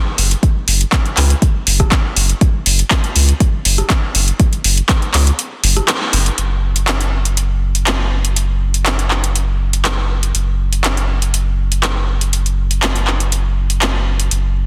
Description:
progressive house; 121 BPM; 4/4; straight; A4 = 441 Hz
saturated sub bass; bass; 0.2-14.7 s; F#1 to C#2; -18 LUFS; equal; sidechain pumping
deep house drum kit; drums; 0.2-14.4 s; handclaps, hi-hat, rim click; -19 LUFS; equal; overdrive
electronic kick drum; drums; 0.4-5.0 s; -16 LUFS; equal; overdrive
light reverb; dense, heavily limited modern master; -16 LUFS; mono
0.0-6.4 A section; 6.4-14.7 B section
kick drops out 5.4-6.4; band accent 5.9

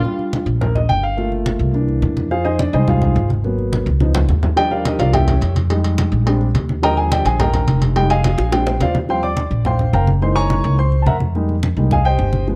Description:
Afro-Cuban jazz; 212 BPM; 4/4; straight; Eb major; A4 = 439 Hz
warm concert grand piano; accompaniment; 0.0-12.6 s; D3 to D6; -22 LUFS; equal
congas; percussion; 0.0-12.6 s; -24 LUFS; equal
upright bass; bass; 0.5-12.6 s; F1 to F2; -20 LUFS; equal
cowbell and bongos; percussion; 4.6-9.0 s; -28 LUFS; equal
moderate spring reverb, RT60 1.4 s, studio reverb; cassette tape; -17 LUFS; mono
0.0-9.1 A section; 9.1-12.6 A section
grand piano solo 0.0-12.6; drum fill 3.9-4.6, 8.2-9.1
0.0 Gm7; 1.7 C7; 2.3 Fm9; 3.4 Abm7; 4.0 Db9; 4.6 Ebmaj9; 5.1 C7b9; 5.7 Fm7; 6.3 Bb13; 6.8 Ebmaj7; 8.0 Fm7; 8.5 Bb9; 9.1 Eb69; 10.2 Gb13; 11.3 Fm11

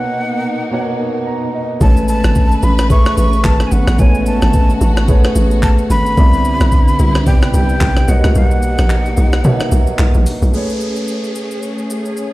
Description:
amapiano; 110 BPM; 4/4; swing 58% on 16ths; A major; A4 = 440 Hz
breathy mellow jazz flute; melody; 0.0-10.0 s; F#5 to C#6; -21 LUFS; equal; tape echo
dark baby grand piano; accompaniment; 0.0-12.3 s; B2 to A#5; -20 LUFS; right 1 dB
warm studio string section; sustained chords; 0.0-12.3 s; B2 to B4; -22 LUFS; equal; sidechain pumping
hollow log drum bass; bass; 1.8-10.5 s; G#1 to B2; -14 LUFS; equal
jungle sampler-style drum kit; drums; 1.8-12.3 s; handclaps, hi-hat, kick drum, rim click, shaker; -14 LUFS; equal
downlifter; sound effects; 10.5-12.3 s; -29 LUFS; equal
little or no reverb; played on a big sound system in a bare room, stone room reverb; -11 LUFS; side -18 dB against mid
0.0-10.5 A section; 10.5-12.3 B section
break 0.0-1.8; drop 0.0-10.5; grand piano fill 1.0-1.8; kick muted 8.4-10.5
0.0 Bmaj9; 1.8 Amaj9; 6.2 Cmaj9; 8.1 Bmaj9; 10.5 Amaj9

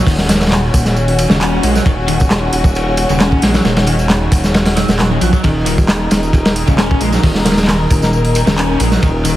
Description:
breakbeat, breaks; 134 BPM; 4/4; straight; Eb minor pentatonic; A4 = 441 Hz
dark studio string section; sustained chords; 0.0-9.4 s; Eb3 to Bb4; -20 LUFS; left 2 dB; sidechain pumping
crunchy overdriven guitar; riff; 0.0-9.3 s; Db3 to Db4; -19 LUFS; equal; tube saturation, digital delay
dark detuned saw bass; bass; 0.1-9.4 s; Eb1 to Bb1; -16 LUFS; equal
crunchy breakbeat drum kit; drums; 0.1-9.4 s; hi-hat, kick drum, ride cymbal, snare drum; -14 LUFS; equal
punchy analog drum machine; drums; 0.1-9.3 s; handclaps, hi-hat, tambourine; -22 LUFS; right 1 dB
light reverb; heavily compressed radio sound, multiband compression; -11 LUFS; side -14 dB against mid
0.0-9.4 A section
0.0 Ebm7

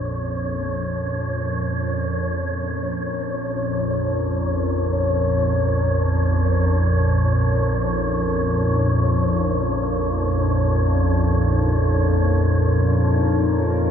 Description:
dark ambient drone; free time; Bb minor; A4 = 439 Hz
deep dark ambient pad; sustained chords; 0.5-13.9 s; Db4 to B4; -28 LUFS; left 1 dB; chorus, built-in reverb
organ-like drone; drone; 0.0-13.9 s; Bb1 to F2; -20 LUFS; equal; ensemble chorus, built-in reverb
wind-like tuned noise texture; texture; 0.0-13.9 s; Db5; -26 LUFS; left 1 dB; built-in reverb
wet huge ambient reverb, RT60 7.0 s; dark, warm production; -18 LUFS; side -8 dB against mid
0.0-13.9 A section
fade-in on ambient pad 0.0-13.9; filter sweep on synth drone 0.0-13.9
0.0 Bbm; 10.8 Badd9/Bb

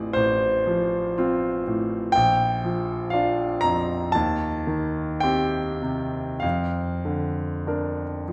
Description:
classical, romantic nocturne for solo piano; 48-62 BPM; 4/4; rubato; Bb major; A4 = 442 Hz
bright concert grand piano; solo; 0.0-8.3 s; A1 to Bb5; -24 LUFS; equal
moderate scoring stage reverb, RT60 1.9 s; -24 LUFS; mono
0.0-8.3 A section
0.0 F7/A; 2.1 Bb; 4.1 Cm/Eb; 6.4 Bb/F

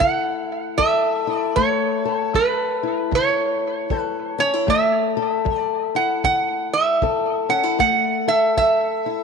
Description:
acoustic country blues, solo or duo; 77 BPM; 4/4; swing 62% on 8ths; F# minor; A4 = 443 Hz
metal-body resonator slide guitar; melody; 0.0-9.2 s; B4 to F#5; -19 LUFS; right 4 dB; tape echo
fingerpicked old ladder-braced acoustic guitar; accompaniment; 0.0-9.2 s; F#2 to A4; -23 LUFS; left 11 dB
kick drum; drums; 0.0-8.8 s; -26 LUFS; right 3 dB
moderate echo chamber reverb, RT60 2.1 s; 1960s-style stereo; -18 LUFS; side -5 dB against mid
0.0-9.2 A section
0.0 F#m7

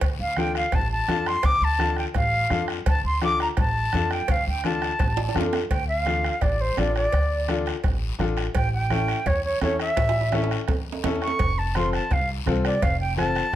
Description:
latin, cumbia; 169 BPM; 4/4; straight; D minor, D harmonic minor from 5.7 s; A4 = 440 Hz
upright bass; bass; 0.0-13.6 s; F1 to F2; -27 LUFS; equal
bombo; percussion; 0.0-13.5 s; -28 LUFS; equal
congas; percussion; 0.0-13.4 s; -32 LUFS; right 1 dB
cowbell and timbales; percussion; 0.0-13.0 s; -32 LUFS; right 7 dB
guiro; percussion; 0.0-13.6 s; -38 LUFS; left 8 dB
silver concert flute; melody; 0.2-13.6 s; C5 to D6; -25 LUFS; equal
bright upright piano; accompaniment; 0.4-13.4 s; C4 to A4; -29 LUFS; left 7 dB
light reverb; -21 LUFS; side -12 dB against mid
0.0-5.7 A section; 5.7-13.6 B section
drum fill 5.2-5.7, 10.0-11.4; flute solo 5.7-13.6
0.0 Dm; 8.6 A7; 11.4 F

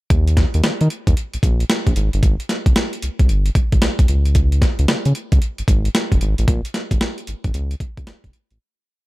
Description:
R&B, new jack swing; 113 BPM; 4/4; swing 64% on 16ths; Bb dorian; A4 = 442 Hz
round analog bass; bass; 0.1-8.6 s; F1 to Eb3; -17 LUFS; equal
boom bap sampler-style drum kit; drums; 0.1-8.6 s; hi-hat, kick drum, snare drum; -18 LUFS; equal; overdrive
little or no reverb; -16 LUFS; side -19 dB against mid
0.1-8.6 breakdown
fade-out 6.5-8.6

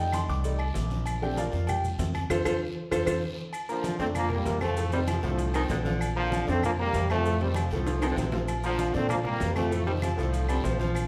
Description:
latin, salsa; 194 BPM; 4/4; straight; Bb major; A4 = 439 Hz
bright upright piano; accompaniment; 0.0-11.1 s; A2 to D6; -34 LUFS; equal
upright bass; bass; 0.0-11.1 s; Bb1 to Bb2; -32 LUFS; equal
claves; percussion; 0.1-11.1 s; -45 LUFS; equal
congas; percussion; 0.1-11.1 s; -38 LUFS; equal
guiro; percussion; 0.1-11.1 s; -50 LUFS; equal
maracas; percussion; 0.1-11.1 s; -51 LUFS; equal
timbales and agogo bells; percussion; 0.1-11.1 s; -39 LUFS; equal
bright trombone section; melody; 3.7-10.8 s; C3 to C4; -32 LUFS; equal
clear baritone saxophone; second line; 5.6-11.0 s; C3 to G3; -36 LUFS; equal
wet large studio reverb, RT60 1.2 s; band playing live in one room; -28 LUFS; mono
0.0-3.5 A section; 3.5-11.1 B section
upright piano solo 0.0-3.5; band accent 2.3-3.5; drum fill 7.9-8.5
0.0 F7; 1.1 Bbmaj7; 2.3 F; 3.5 Bb; 4.8 F; 6.0 Bbmaj7; 7.2 F; 8.5 Bbmaj7; 9.7 F

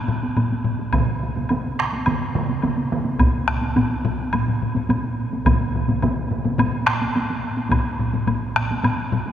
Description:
japanese traditional, taiko drum ensemble; 106 BPM; 4/4; straight
solo taiko drums; percussion; 0.1-9.3 s; -23 LUFS; left 2 dB
taiko ensemble; percussion; 0.2-9.3 s; -25 LUFS; right 1 dB
woodblock; percussion; 0.4-9.0 s; -30 LUFS; equal
taiko ensemble; percussion; 0.9-7.0 s; -27 LUFS; right 2 dB
taiko ensemble; percussion; 0.9-7.8 s; -26 LUFS; equal
wet cathedral reverb, RT60 5.0 s; recorded in a church or concert hall; -19 LUFS; side -10 dB against mid
0.0-9.3 A section

